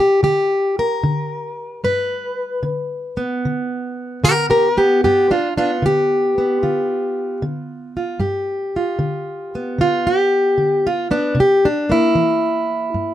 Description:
acoustic country blues, solo or duo; 75 BPM; 4/4; swing 67% on 8ths; G mixolydian; A4 = 440 Hz
fingerpicked plugged-in steel-string acoustic guitar; solo; 0.0-13.1 s; G2 to B4; -16 LUFS; equal
light reverb; -16 LUFS; side -12 dB against mid
0.0-13.1 A section
steel-string acoustic guitar solo 0.0-13.1
0.0 G7; 11.4 C7

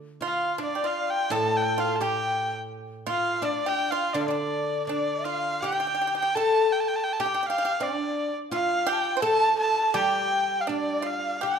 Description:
chinese traditional, Chinese chamber ensemble; 83 BPM; 2/4; rubato; D yu mode; A4 = 440 Hz
guzheng; accompaniment; 0.0-6.4, 9.9-11.6 s; A2 to A4; -35 LUFS; right 4 dB
clear erhu; melody; 0.2-11.6 s; D5 to A5; -27 LUFS; right 2 dB
mellow hollow xiao; second line; 0.2-11.6 s; D5 to A5; -31 LUFS; left 4 dB
oud; second line; 0.2-11.6 s; D4 to A4; -30 LUFS; left 4 dB
pipa; second line; 0.2-11.6 s; D4 to C5; -31 LUFS; right 4 dB
moderate recital hall reverb, RT60 1.6 s; minimal, uncompressed stereo recording; -23 LUFS; side -7 dB against mid
0.0-5.6 A section; 5.6-11.6 B section

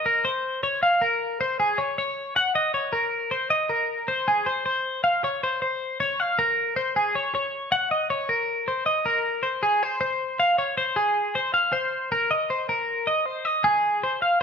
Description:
rock; 313 BPM (eighths); 7/8; straight; Ab major; A4 = 440 Hz
twelve-string electric guitar; solo; 0.0-14.4 s; Ab4 to Gb5; -22 LUFS; equal
moderate large studio reverb, RT60 1.2 s; band playing live in one room; -22 LUFS; side -6 dB against mid
0.2-11.0 A section; 11.0-14.4 B section

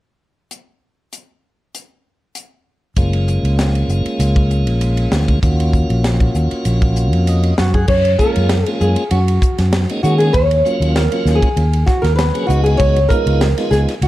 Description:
electric jazz fusion; 98 BPM; 4/4; swing 53% on 16ths; A4 = 440 Hz
crisp fusion drum kit; drums; 0.5-14.1 s; crash cymbal, hi-hat, kick drum, ride cymbal, snare drum; -20 LUFS; equal
tonewheel organ; accompaniment; 3.0-14.1 s; Gb3 to Gb5; -21 LUFS; equal; slow rotary speaker
fingered electric bass; bass; 3.0-14.1 s; Gb1 to Eb3; -15 LUFS; equal
flamenco guitar; melody; 7.6-14.1 s; Gb4 to Db5; -18 LUFS; equal
light reverb, small room reverb; dark, warm production; -13 LUFS; side -15 dB against mid
0.5-3.0 A section; 3.0-7.9 B section; 7.9-14.1 C section
tonewheel organ fill 7.0-7.9
0.5 N.C.; 3.0 Gbmaj9; 5.4 Ebm9; 7.6 Gbsus2; 7.9 Gbmaj9; 10.3 Ebm9; 12.5 Db9sus4

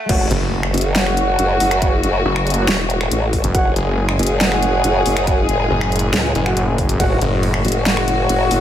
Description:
heavy wobble dubstep; 139 BPM; 4/4; half-time; F# minor; A4 = 441 Hz
muted studio string section; sustained chords; 0.1-8.6 s; A2 to G#4; -22 LUFS; left 3 dB; sidechain pumping
dark brass ensemble; stabs; 0.1-8.6 s; F#4 to F#5; -23 LUFS; right 2 dB; ping-pong delay
formant-sweep wobble bass; bass; 0.1-8.6 s; E1 to C#2; -18 LUFS; equal; chorus, overdrive
dubstep drum kit; drums; 0.1-8.6 s; crash cymbal, finger snaps, hi-hat, ride cymbal, snare drum; -22 LUFS; equal; overdrive, studio reverb
electronic kick drum; drums; 0.1-7.1 s; -20 LUFS; equal; overdrive, studio reverb
impact; sound effects; 0.1-1.8 s; -28 LUFS; equal
snarling distorted saw bass; bass; 0.3-7.6 s; F#1; -18 LUFS; equal; distortion, overdrive
light reverb; high-pass filter; -14 LUFS; side -10 dB against mid
0.1-8.6 A section
drop 0.1-8.6; impact 0.1-1.8
0.1 F#madd9

